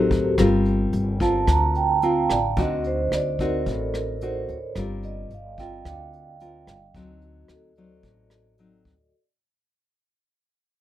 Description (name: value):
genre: bossa nova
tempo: 110 BPM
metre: 4/4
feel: straight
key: G minor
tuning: A4 = 440 Hz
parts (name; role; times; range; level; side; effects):
- nylon-string guitar; accompaniment; 0.0-9.1 s; A2 to Bb4; -25 LUFS; left 1 dB; none
- vibraphone with soft mallets; accompaniment; 0.0-9.1 s; F#4 to Bb5; -25 LUFS; right 3 dB; none
- upright bass; bass; 0.0-9.1 s; G1 to D2; -26 LUFS; equal; none
- vintage brush drum kit; drums; 0.1-9.0 s; hi-hat, kick drum, rim click; -29 LUFS; equal; none
room: moderate studio reverb, RT60 0.5 s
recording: rough home demo mix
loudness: -20 LUFS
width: side -12 dB against mid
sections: 0.0-9.1 A section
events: fade-out 0.0-9.1; vibraphone solo 0.0-9.1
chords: 0.4 Gm11; 2.6 D7b9; 4.8 Gm7; 6.9 D7b9